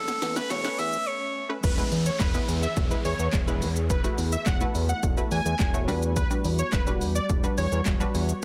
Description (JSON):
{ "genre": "dance-pop", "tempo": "106 BPM", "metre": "4/4", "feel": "straight", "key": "unclear", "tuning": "A4 = 438 Hz", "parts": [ { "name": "bright alto saxophone", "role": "melody", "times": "0.0-1.5 s", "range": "A4 to E5", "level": "-32 LUFS", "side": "equal", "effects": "tape echo" }, { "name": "glassy FM pad", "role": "sustained chords", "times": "0.1-8.4 s", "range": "E3 to G#4", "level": "-39 LUFS", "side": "equal", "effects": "none" }, { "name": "fat analog bass", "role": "bass", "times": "0.0-8.3 s", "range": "E1 to E2", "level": "-30 LUFS", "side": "equal", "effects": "sidechain pumping" }, { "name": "riser and downlifter", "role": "sound effects", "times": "0.0-6.2 s", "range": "none", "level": "-42 LUFS", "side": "equal", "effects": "none" }, { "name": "punchy analog drum machine", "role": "drums", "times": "0.1-8.4 s", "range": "crash cymbal, handclaps, hi-hat, kick drum, shaker, snare drum", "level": "-30 LUFS", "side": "equal", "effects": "none" }, { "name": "punchy chord stab", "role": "accompaniment", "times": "0.4-8.3 s", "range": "G3 to C#5", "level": "-35 LUFS", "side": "equal", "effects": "chorus, sidechain pumping" }, { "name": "unison lead", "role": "melody", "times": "1.6-7.8 s", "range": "B4 to G#5", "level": "-35 LUFS", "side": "equal", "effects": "tape echo" } ], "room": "light reverb", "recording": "dense, heavily limited modern master, high-pass filter", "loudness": "-26 LUFS", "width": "mono", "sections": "0.0-1.6 A section; 1.6-8.4 B section", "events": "build-up 0.0-1.6; drum fill 0.0-1.1; riser 0.0-1.6; break 1.1-1.6; drop 1.6-8.4", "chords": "0.0 Aadd9/E; 1.6 E; 3.9 B7sus4/E; 5.9 Gmaj7/E" }